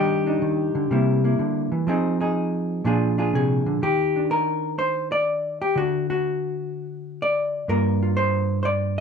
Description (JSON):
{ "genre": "solo jazz", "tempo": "124 BPM", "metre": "4/4", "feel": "swing 68% on 8ths", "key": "Eb major", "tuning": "A4 = 440 Hz", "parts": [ { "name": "hollow-body jazz guitar", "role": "solo", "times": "0.0-9.0 s", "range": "G2 to D5", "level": "-20 LUFS", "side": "equal", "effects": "none" } ], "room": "moderate studio reverb, RT60 0.7 s", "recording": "dark, warm production", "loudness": "-20 LUFS", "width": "side -6 dB against mid", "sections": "0.0-3.8 A section; 3.8-9.0 B section", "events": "hollow-body jazz guitar solo 0.0-3.8", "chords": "0.0 Ebmaj7; 0.9 C7; 1.9 Fm7; 2.8 Bb9; 3.8 Ebmaj7; 5.7 N.C.; 7.7 Gm7", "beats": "0.41 0.90 1.38 | 1.87 2.35 2.84 3.32 | 3.81 4.29 4.78 5.26 | 5.75 6.23 6.71 7.20 | 7.68 8.16 8.65" }